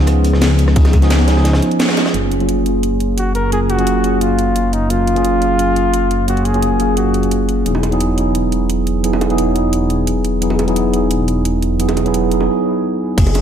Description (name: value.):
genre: liquid drum and bass.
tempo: 174 BPM.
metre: 4/4.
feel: straight.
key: F# major.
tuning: A4 = 441 Hz.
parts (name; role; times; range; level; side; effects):
mellow tine electric piano; accompaniment; 0.0-13.4 s; E#3 to E#5; -16 LUFS; right 1 dB; wide subtle chorus, low-pass filter, diffuse ambient delay.
dark detuned saw bass; bass; 0.0-13.4 s; E1 to C#2; -17 LUFS; equal; tube saturation.
crunchy breakbeat drum kit; drums; 0.1-2.1, 13.2-13.4 s; hi-hat, snare drum; -25 LUFS; equal; high-pass filter on hats, small room ambience, high-pass filter on snare, high-pass filter on room.
drum and bass drum kit; drums; 0.1-13.4 s; crash cymbal, hi-hat, rim click, snare drum; -23 LUFS; equal; overdrive, small room ambience.
electronic kick drum; drums; 0.8-1.0, 13.2 s; none; -13 LUFS; equal; overdrive, small room ambience.
bongos; percussion; 0.8-1.4, 7.7-13.4 s; none; -26 LUFS; right 3 dB; none.
mellow flugelhorn; melody; 3.2-7.5 s; D#4 to A#4; -20 LUFS; left 1 dB; ping-pong delay.
room: moderate lush hall reverb, RT60 2.0 s.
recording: dreamy mix soaked in reverb.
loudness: -13 LUFS.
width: side -9 dB against mid.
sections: 0.0-2.1 A section; 2.1-13.2 B section.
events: band accent 1.8; filter sweep on tine electric piano 2.1-13.2; break 12.5-13.2.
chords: 0.0 C#9; 2.1 F#maj9; 7.7 Emaj9.